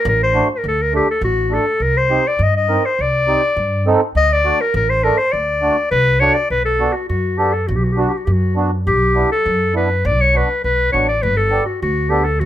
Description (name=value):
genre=klezmer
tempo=102 BPM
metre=2/4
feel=straight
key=D phrygian dominant, B minor from 6.5 s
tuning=A4 = 440 Hz
part: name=mellow clarinet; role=melody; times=0.0-12.5 s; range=F#4 to Eb5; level=-16 LUFS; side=left 2 dB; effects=none
part: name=upright bass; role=bass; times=0.1-12.5 s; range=G1 to G2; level=-19 LUFS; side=equal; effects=none
part: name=mellow accordion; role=accompaniment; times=0.3-12.3 s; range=A3 to Bb4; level=-19 LUFS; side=right 3 dB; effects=none
room=light reverb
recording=none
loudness=-14 LUFS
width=side -12 dB against mid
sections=0.0-6.5 A section; 6.5-12.5 B section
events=none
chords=0.0 D5; 1.8 Cm; 4.1 D; 6.5 Bm; 11.2 G